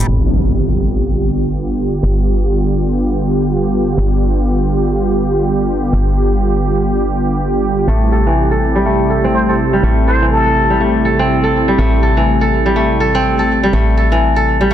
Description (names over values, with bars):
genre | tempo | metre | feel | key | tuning
house | 123 BPM | 4/4 | swing 59% on 16ths | unclear | A4 = 441 Hz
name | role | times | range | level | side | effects
warm analog pad | sustained chords | 0.0-14.7 s | C3 to G4 | -16 LUFS | right 1 dB | chorus
kora | arpeggios | 0.0-1.3, 7.9-14.7 s | E3 to A4 | -15 LUFS | equal | digital delay
woody FM bass | bass | 0.0-14.7 s | G1 to A1 | -17 LUFS | equal | none
impact | sound effects | 0.1-2.0 s | none | -18 LUFS | equal | none
trumpet with plunger mute | melody | 9.3-10.8 s | A4 to C5 | -18 LUFS | left 1 dB | vintage 12-bit sampler grit, digital delay
room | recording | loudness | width
light reverb, digital ambience | dense, heavily limited modern master, low-pass filter | -12 LUFS | side -10 dB against mid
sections
0.1-14.7 A section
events
impact 0.1-2.0; filter sweep 0.1-14.7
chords
0.1 G7; 7.9 Am7